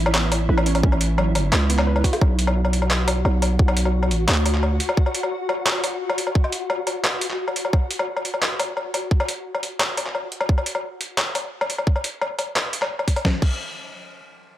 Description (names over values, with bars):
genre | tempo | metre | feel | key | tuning
half-time drum and bass | 174 BPM | 4/4 | half-time | B minor | A4 = 437 Hz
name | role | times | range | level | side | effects
warbly dusty pluck | arpeggios | 0.0-2.2 s | F#3 to B4 | -30 LUFS | right 7 dB | chorus, analog delay
growling 808-style bass | bass | 0.0-4.8 s | G1 to D2 | -20 LUFS | equal | none
flickering grainy texture | texture | 0.0-10.5 s | E4 to F#4 | -30 LUFS | left 1 dB | built-in reverb
boom bap sampler-style drum kit | drums | 0.1-13.5 s | crash cymbal, handclaps, hi-hat, snare drum, woodblock | -23 LUFS | left 1 dB | none
electronic kick drum | drums | 0.8-13.5 s | none | -18 LUFS | equal | overdrive
room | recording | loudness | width
digital ambience | dry, gritty hardware recording, transformer saturation | -19 LUFS | side -13 dB against mid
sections
0.0-2.2 A section; 2.2-13.2 B section; 13.2-14.6 C section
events
drop 0.0-2.2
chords
0.0 A; 2.2 B5; 7.7 N.C.